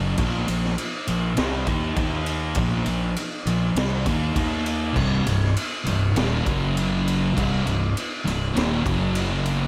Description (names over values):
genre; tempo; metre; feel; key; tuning
stoner and doom metal; 100 BPM; 4/4; straight; unclear; A4 = 440 Hz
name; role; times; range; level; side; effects
thick fuzz guitar; riff; 0.0-9.7 s; C2 to Eb4; -27 LUFS; equal; distortion
fuzz fingered electric bass; bass; 0.0-9.7 s; C1 to Eb2; -31 LUFS; equal; overdrive
raw garage drum kit; drums; 0.2-9.6 s; crash cymbal, kick drum, ride cymbal, snare drum; -29 LUFS; equal; none
thick fuzz guitar; riff; 4.9-9.7 s; C2 to F#3; -28 LUFS; equal; distortion
room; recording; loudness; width
studio ambience; none; -23 LUFS; mono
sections
0.0-9.7 A section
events
none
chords
0.2 Bb5; 2.0 Eb5; 2.6 Bb5; 4.4 Eb5; 5.0 Cm; 6.5 F#5; 7.4 Cm; 8.9 F#5